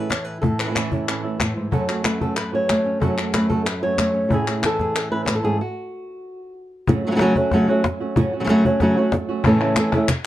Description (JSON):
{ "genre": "flamenco", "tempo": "186 BPM", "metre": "4/4", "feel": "straight", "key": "F# minor", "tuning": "A4 = 438 Hz", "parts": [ { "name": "flamenco guitar", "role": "melody", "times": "0.0-10.1 s", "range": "F#2 to C#5", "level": "-20 LUFS", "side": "equal", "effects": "none" }, { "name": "flamenco guitar", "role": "stabs", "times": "0.0-10.1 s", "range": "F#2 to F#4", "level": "-26 LUFS", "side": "right 4 dB", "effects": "none" }, { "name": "cajon", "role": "percussion", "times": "0.1-10.2 s", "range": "none", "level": "-24 LUFS", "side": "left 2 dB", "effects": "none" }, { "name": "palmas hand claps", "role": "percussion", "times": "0.1-5.4, 9.4-10.2 s", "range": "none", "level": "-26 LUFS", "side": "left 4 dB", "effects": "none" } ], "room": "light reverb", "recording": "dark, warm production", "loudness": "-18 LUFS", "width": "side -13 dB against mid", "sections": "0.0-6.9 A section; 6.9-10.3 B section", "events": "stop 5.6-6.9", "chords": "0.0 A; 1.7 F#m; 4.3 A; 5.6 N.C.; 6.9 F#m; 9.4 A" }